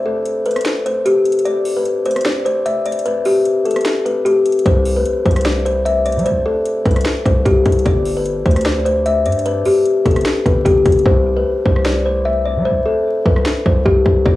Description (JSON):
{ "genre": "hip hop, trap", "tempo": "150 BPM", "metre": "4/4", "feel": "half-time", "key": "unclear", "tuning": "A4 = 438 Hz", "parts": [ { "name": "kalimba", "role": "melody", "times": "0.0-14.4 s", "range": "G4 to E5", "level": "-15 LUFS", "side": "left 2 dB", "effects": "low-pass filter, cassette tape" }, { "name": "trap drum kit", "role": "drums", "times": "0.3-14.4 s", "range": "finger snaps, hi-hat, kick drum, rim click, snare drum", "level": "-18 LUFS", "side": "equal", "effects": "cassette tape" }, { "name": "hard-hitting 808-style bass", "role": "bass", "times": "4.7-14.4 s", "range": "G1 to G3", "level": "-19 LUFS", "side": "equal", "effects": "none" } ], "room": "light reverb, studio ambience", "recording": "home recording on cassette, vinyl crackle, studio reverb", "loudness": "-13 LUFS", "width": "side -16 dB against mid", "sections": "0.0-14.4 A section", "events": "break 0.0-4.7; hi-hats muted 11.1-14.4", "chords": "0.0 N.C.; 4.7 C5; 7.9 G5; 11.1 C5", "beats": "0.26 0.66 1.06 | 1.46 1.86 2.26 2.66 | 3.06 3.46 3.86 4.26 | 4.66 5.06 5.46 5.86 | 6.26 6.66 7.06 7.46 | 7.86 8.26 8.66 9.06 | 9.46 9.86 10.26 10.66 | 11.06 11.46 11.86 12.26 | 12.66 13.06 13.46 13.86 | 14.26" }